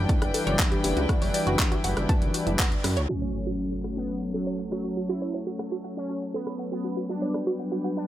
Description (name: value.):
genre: melodic techno.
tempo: 120 BPM.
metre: 4/4.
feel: straight.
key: F# phrygian.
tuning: A4 = 442 Hz.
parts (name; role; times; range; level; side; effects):
warm studio string section; sustained chords; 0.0-8.1 s; F#3 to G5; -35 LUFS; equal; sidechain pumping, low-pass filter.
brassy analog pad; stabs; 0.0-8.1 s; E3 to D4; -30 LUFS; left 2 dB; chorus, sidechain pumping, digital delay.
fat analog bass; bass; 0.0-3.1 s; F#1 to F#2; -27 LUFS; equal; sidechain pumping.
wide unison pluck; arpeggios; 0.1-7.9 s; C#4 to A5; -33 LUFS; right 2 dB; sidechain pumping, digital delay.
deep house drum kit; drums; 0.1-7.4 s; handclaps, hi-hat, rim click; -29 LUFS; equal; low-pass filter on hats, low-pass filter on snare.
electronic kick drum; drums; 0.1-2.7 s; none; -24 LUFS; equal; none.
resonant sweep polysynth; melody; 3.1-8.1 s; F#3 to E4; -35 LUFS; right 3 dB; chorus, phaser, sidechain pumping, tape echo.
impact; sound effects; 3.1-5.1 s; none; -36 LUFS; equal; none.
room: light reverb.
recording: low-pass filter.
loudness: -24 LUFS.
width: side -13 dB against mid.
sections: 0.0-3.1 A section; 3.1-8.1 B section.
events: band accent 2.6; impact 3.1-5.1; filter sweep on string section 3.1-8.1; filter sweep 3.1-8.1.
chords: 0.0 Em7/F#; 3.1 F#m; 7.1 G/F#.